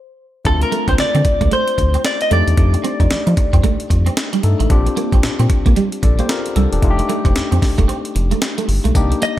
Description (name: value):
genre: R&B, new jack swing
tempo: 113 BPM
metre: 4/4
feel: swing 61% on 16ths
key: unclear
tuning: A4 = 440 Hz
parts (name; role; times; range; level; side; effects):
- barky tine electric piano; accompaniment; 0.4-9.4 s; A3 to D5; -23 LUFS; left 5 dB; none
- direct-recorded clean electric guitar; melody; 0.5-4.4, 9.2-9.4 s; A4 to Eb5; -19 LUFS; equal; lush chorus
- round analog bass; bass; 0.5-9.1 s; E1 to F3; -16 LUFS; equal; none
- breakbeat sampler-style drum kit; drums; 0.5-9.4 s; hi-hat, kick drum, snare drum, tambourine; -18 LUFS; equal; none
- clean electric guitar; riff; 0.6-9.3 s; G3 to Eb4; -23 LUFS; right 6 dB; ensemble chorus
room: digital ambience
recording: bright 1980s-style digital production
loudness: -13 LUFS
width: side -13 dB against mid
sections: 0.5-8.9 A section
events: stop 0.0-0.5; break 7.9-8.9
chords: 0.5 Dm7; 2.3 F13; 4.7 Bb69; 6.8 F13